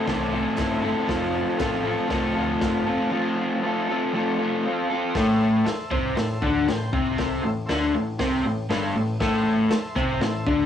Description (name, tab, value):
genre	garage rock duo or trio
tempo	118 BPM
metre	4/4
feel	straight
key	A minor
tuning	A4 = 440 Hz
part	overdriven combo organ	sustained chords	0.0-10.5 s	A4 to G5	-35 LUFS	left 1 dB	cassette tape, plate reverb
part	raw garage guitar	riff	0.0-10.7 s	G2 to A4	-22 LUFS	left 1 dB	overdrive, cassette tape
part	growling picked electric bass	bass	0.1-10.7 s	F1 to D2	-32 LUFS	equal	overdrive
part	raw garage drum kit	drums	0.1-10.6 s	hi-hat, kick drum, snare drum	-30 LUFS	left 1 dB	cassette tape
part	group handclap	percussion	0.6-2.7, 9.7-10.1 s	none	-44 LUFS	right 8 dB	none
room	moderate studio reverb, RT60 0.5 s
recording	home recording on cassette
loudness	-21 LUFS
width	side -9 dB against mid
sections	0.0-5.2 A section; 5.2-10.7 B section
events	none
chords	0.0 Am; 1.1 F; 5.2 Am